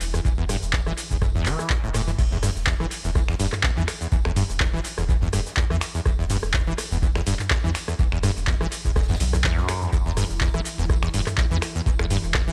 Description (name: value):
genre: acid house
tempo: 124 BPM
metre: 4/4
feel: swing 54% on 16ths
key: E minor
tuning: A4 = 441 Hz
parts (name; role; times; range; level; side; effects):
- warm analog pad; sustained chords; 0.0-2.2, 10.3-12.5 s; E3 to E4; -42 LUFS; equal; none
- saturated sub bass; bass; 0.0-12.5 s; E1 to E2; -31 LUFS; equal; sidechain pumping
- booming analog drum machine; drums; 0.0-12.5 s; cabasa, crash cymbal, finger snaps, handclaps, hi-hat, rim click, toms; -30 LUFS; equal; dub echo
- tight funk drum kit; drums; 0.0-12.5 s; hi-hat, snare drum, tambourine; -45 LUFS; equal; none
- acid bass, saw; riff; 0.1-12.5 s; E2 to G3; -29 LUFS; equal; ensemble chorus, vintage 12-bit sampler grit, analog delay
- electronic kick drum; drums; 0.2-12.5 s; none; -26 LUFS; equal; none
room: studio ambience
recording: echo-heavy mix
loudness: -23 LUFS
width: mono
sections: 0.0-2.2 A section; 2.2-12.5 B section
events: drop 2.2-12.5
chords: none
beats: | 0.25 0.73 1.22 1.70 | 2.19 2.67 3.15 3.64 | 4.12 4.61 5.09 5.57 | 6.06 6.54 7.02 7.51 | 7.99 8.47 8.96 9.44 | 9.93 10.41 10.89 11.38 | 11.86 12.35